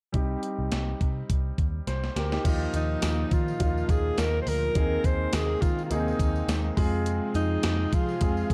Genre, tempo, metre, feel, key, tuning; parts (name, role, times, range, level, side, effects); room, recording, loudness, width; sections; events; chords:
1980s-style pop; 104 BPM; 4/4; swing 55% on 16ths; Eb major; A4 = 442 Hz
warm concert grand piano; accompaniment; 0.1-8.5 s; F3 to C5; -34 LUFS; equal
vintage muted picked electric bass; bass; 0.1-8.5 s; C2 to F3; -32 LUFS; equal
gated 80s digital drum machine; drums; 0.1-8.5 s; crash cymbal, hi-hat, kick drum, snare drum; -30 LUFS; equal; gated reverb, gated reverb snare
phased analog pad; sustained chords; 2.9-8.5 s; Bb2 to Ab4; -41 LUFS; equal
tambourine; percussion; 2.5-8.5 s; -54 LUFS; equal
breathy alto saxophone; melody; 2.8-8.5 s; Eb4 to C5; -33 LUFS; equal
light reverb; dark, warm production; -27 LUFS; mono
0.1-2.5 A section; 2.5-8.5 B section
drum fill 1.9-2.5
0.1 Cm; 2.5 Ebsus2; 4.8 Abadd9/Eb; 6.8 Fm